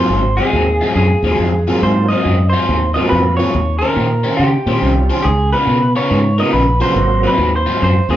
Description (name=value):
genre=electric blues shuffle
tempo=140 BPM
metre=4/4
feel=swing 64% on 8ths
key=Ab mixolydian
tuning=A4 = 440 Hz
part: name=electric guitar through a small old amp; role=melody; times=0.0-8.2 s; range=G4 to Eb5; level=-17 LUFS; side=right 1 dB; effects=none
part: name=bright tonewheel organ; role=accompaniment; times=0.0-8.2 s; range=Gb3 to Gb4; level=-21 LUFS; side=right 4 dB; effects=slow rotary speaker, overdrive, chorus vibrato
part: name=overdriven semi-hollow guitar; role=riff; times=0.0-8.2 s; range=Ab2 to C5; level=-18 LUFS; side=left 2 dB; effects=phaser
part: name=fingered electric bass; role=bass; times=0.1-8.2 s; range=Ab1 to Db3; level=-16 LUFS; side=equal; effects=none
room=moderate large studio reverb, RT60 0.9 s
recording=band playing live in one room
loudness=-12 LUFS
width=side -12 dB against mid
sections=0.0-8.2 A section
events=none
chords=0.0 Ab13; 3.5 Eb13; 5.2 Db13; 7.0 Ab13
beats=| 0.11 0.54 0.97 1.40 | 1.82 2.25 2.68 3.11 | 3.54 3.96 4.39 4.82 | 5.25 5.68 6.11 6.54 | 6.96 7.39 7.82